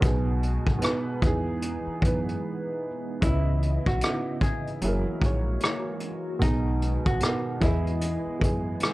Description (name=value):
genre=lo-fi hip hop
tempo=75 BPM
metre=4/4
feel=swing 62% on 16ths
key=unclear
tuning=A4 = 440 Hz
part: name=dark upright piano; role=accompaniment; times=0.0-8.9 s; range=B2 to D#5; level=-30 LUFS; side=right 2 dB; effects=cassette tape, low-pass filter
part: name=hollow soft pad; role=sustained chords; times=0.0-8.9 s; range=C#3 to D#5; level=-36 LUFS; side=equal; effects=ensemble chorus, low-pass filter
part: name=upright bass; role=bass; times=0.0-8.8 s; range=F#1 to F#2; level=-28 LUFS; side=equal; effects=none
part: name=vintage brush drum kit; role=drums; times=0.0-8.9 s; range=hi-hat, kick drum, rim click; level=-26 LUFS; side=equal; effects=none
part: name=archtop guitar, miked and amplified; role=melody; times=3.2-8.8 s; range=D#4 to G#4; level=-33 LUFS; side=equal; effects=low-pass filter, tape echo
room=light reverb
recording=none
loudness=-24 LUFS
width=side -18 dB against mid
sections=0.0-8.9 A section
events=break 2.4-3.2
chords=0.0 B6; 1.2 Emaj7; 3.2 C#m9; 4.8 F#9; 6.4 B6; 7.6 Emaj7